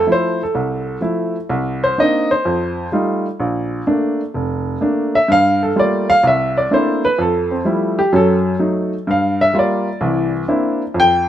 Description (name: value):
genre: solo jazz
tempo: 127 BPM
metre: 4/4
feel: swing 67% on 8ths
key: F major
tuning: A4 = 441 Hz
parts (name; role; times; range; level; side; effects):
- warm upright piano; solo; 0.0-11.3 s; F1 to G5; -14 LUFS; equal; none
room: light reverb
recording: minimal, uncompressed stereo recording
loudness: -15 LUFS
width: side -11 dB against mid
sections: 0.0-11.3 A section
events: upright piano solo 0.0-11.3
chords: 0.0 Fmaj7; 1.5 Cm9; 2.4 F9; 3.4 Bbmaj7; 5.3 Gm9; 6.2 C13; 7.2 Fmaj9; 8.1 Gbm6; 9.1 Gm7; 10.0 C9